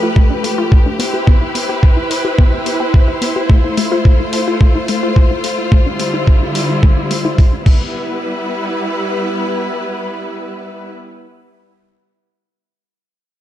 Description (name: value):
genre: nu-disco, nu disco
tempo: 108 BPM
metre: 4/4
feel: straight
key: unclear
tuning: A4 = 440 Hz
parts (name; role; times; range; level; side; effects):
- warm symphonic string section; sustained chords; 0.0-10.9 s; D3 to C5; -18 LUFS; left 1 dB; sidechain pumping
- wide unison pluck; arpeggios; 0.0-8.2 s; A3 to B4; -21 LUFS; left 2 dB; cassette tape, sidechain pumping, analog delay
- electronic kick drum; drums; 0.2-7.8 s; none; -9 LUFS; equal; none
- house drum kit; drums; 0.4-7.8 s; crash cymbal, hi-hat; -25 LUFS; left 2 dB; none
room: moderate lush hall reverb, RT60 1.7 s, digital ambience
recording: dreamy mix soaked in reverb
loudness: -12 LUFS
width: side -12 dB against mid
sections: 0.0-7.9 A section; 7.9-10.2 B section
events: filter sweep on synth arpeggio sound 0.0-7.9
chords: 0.0 G9; 1.0 Cmaj7; 3.5 Fmaj7; 5.7 Dm11; 7.7 G6